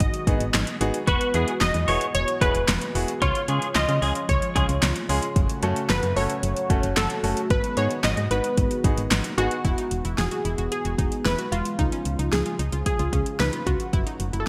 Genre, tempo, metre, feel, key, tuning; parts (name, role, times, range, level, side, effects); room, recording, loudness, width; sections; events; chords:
synth-pop; 112 BPM; 4/4; straight; E major; A4 = 438 Hz
funky polysynth comp; melody; 0.0-14.5 s; F4 to D#5; -30 LUFS; equal; chorus
chorused pulse-width pad; sustained chords; 0.0-14.5 s; C#3 to F#4; -35 LUFS; equal; phaser
solid FM bass; bass; 0.0-14.4 s; E1 to C#3; -29 LUFS; equal
deep house drum kit; drums; 0.0-14.5 s; handclaps, hi-hat, kick drum, snare drum; -28 LUFS; equal; gated reverb
bright concert grand piano; accompaniment; 0.3-9.5 s; G#3 to B4; -32 LUFS; equal
clean electric guitar; second line; 1.1-4.6 s; E#4 to C#5; -31 LUFS; equal; ensemble chorus, delay
analog pluck; arpeggios; 9.6-14.5 s; C#4 to F#4; -37 LUFS; equal; chorus
moderate lush hall reverb, RT60 2.4 s; bright 1980s-style digital production; -24 LUFS; mono
0.0-9.6 A section; 9.6-14.5 B section
0.0 G#m7; 1.1 Eadd9; 3.2 C#; 5.4 F#m; 7.5 G#m7; 9.6 Eadd9; 11.8 C#; 13.9 F#m